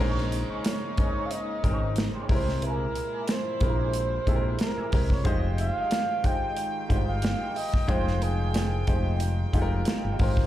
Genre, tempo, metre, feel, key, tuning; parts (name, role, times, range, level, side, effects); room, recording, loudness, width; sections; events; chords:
lush 1970s-style soul; 91 BPM; 4/4; swing 54% on 16ths; Bb dorian; A4 = 444 Hz
warm grand piano; accompaniment; 0.0-10.5 s; Ab3 to G5; -33 LUFS; left 1 dB; plate reverb, slapback echo
rich studio string section; sustained chords; 0.0-10.5 s; Bb2 to G5; -38 LUFS; right 1 dB
electric guitar through a small old amp; riff; 0.0-10.4 s; Ab3 to Eb5; -40 LUFS; right 3 dB; wah, ensemble chorus, slapback echo
fingered electric bass; bass; 0.0-10.5 s; F1 to C2; -28 LUFS; equal
modern studio drum kit; drums; 0.2-10.5 s; hi-hat, kick drum, snare drum; -27 LUFS; equal
breathy flugelhorn; melody; 0.7-10.5 s; Ab4 to G5; -32 LUFS; right 1 dB; plate reverb, slapback echo
light reverb; live gig heard through the venue's PA, club reverb; -24 LUFS; side -13 dB against mid
0.0-10.5 A section
0.0 Bbm11; 2.3 C7b13; 5.3 Fm9